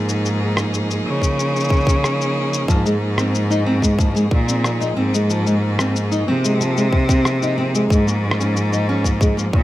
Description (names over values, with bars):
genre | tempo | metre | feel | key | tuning
folktronica | 92 BPM | 4/4 | straight | Ab major | A4 = 442 Hz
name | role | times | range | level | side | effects
clear string quartet | sustained chords | 0.0-9.6 s | F3 to Ab4 | -25 LUFS | right 2 dB | vintage 12-bit sampler grit
bright cello | bass | 0.0-9.6 s | Ab2 to Db3 | -20 LUFS | equal | none
electronic shaker and rim click | drums | 0.1-9.5 s | none | -24 LUFS | left 2 dB | none
electronic kick drum | drums | 1.2-9.6 s | none | -17 LUFS | equal | none
nylon-string guitar | arpeggios | 2.7-9.5 s | F3 to Eb4 | -21 LUFS | equal | ping-pong delay
room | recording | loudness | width
light reverb | none | -16 LUFS | side -15 dB against mid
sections
0.0-9.6 A section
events
none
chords
0.0 Eb7sus4/Ab; 2.7 Ab6; 7.9 Eb7sus4/Ab